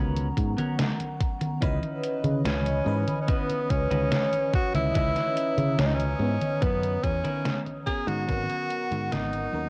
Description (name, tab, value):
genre	vaporwave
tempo	72 BPM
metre	4/4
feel	straight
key	C# dorian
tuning	A4 = 440 Hz
part	FM electric piano with soft pad layer	accompaniment	0.0-9.7 s	E3 to A#5	-36 LUFS	equal	phaser, analog chorus, analog delay
part	warbly tape-like pad	sustained chords	0.0-9.7 s	B3 to D#6	-40 LUFS	equal	chorus, built-in reverb, vintage 12-bit sampler grit
part	clean electric guitar	riff	0.0-9.6 s	B3 to B4	-40 LUFS	equal	subtle chorus, analog delay
part	fingered electric bass	bass	0.0-9.7 s	G#1 to C#3	-31 LUFS	equal	none
part	detuned 8-bit digital drum machine	drums	0.2-9.5 s	congas, hi-hat, snare drum	-33 LUFS	equal	overdrive, cassette tape
part	electronic kick drum	drums	0.4-8.5 s	none	-30 LUFS	equal	overdrive, cassette tape
part	clear tenor saxophone	melody	2.5-9.7 s	B3 to G#4	-31 LUFS	equal	cassette tape
room	light reverb, digital ambience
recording	home recording on cassette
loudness	-27 LUFS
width	mono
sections	0.0-9.7 A section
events	fade-out 6.1-9.7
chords	0.0 G#m11 (rootless); 1.6 C#m9; 7.9 G#m11